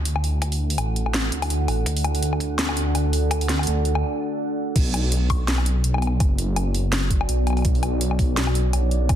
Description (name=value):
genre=half-time drum and bass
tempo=166 BPM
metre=4/4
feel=swing 56% on 16ths, half-time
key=B minor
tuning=A4 = 440 Hz
part: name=deep dark ambient pad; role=sustained chords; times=0.0-9.2 s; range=B3 to F#5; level=-28 LUFS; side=right 1 dB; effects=chorus, built-in reverb, sidechain pumping
part: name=dark detuned saw bass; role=bass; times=0.0-9.2 s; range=F#1 to D2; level=-22 LUFS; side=equal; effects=tube saturation
part: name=drum and bass drum kit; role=drums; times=0.1-9.2 s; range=crash cymbal, hi-hat, snare drum, woodblock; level=-26 LUFS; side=left 2 dB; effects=overdrive
part: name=electronic kick drum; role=drums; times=0.4-9.2 s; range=none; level=-21 LUFS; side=equal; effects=overdrive, high-pass filter on kick, high-pass filter on room
room=light reverb, digital ambience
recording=dense, heavily limited modern master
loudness=-20 LUFS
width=side -10 dB against mid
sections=0.0-4.8 A section; 4.8-9.2 B section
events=build-up 0.0-4.8; break 4.0-4.8; drop 4.8-9.2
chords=0.0 D; 4.8 Bm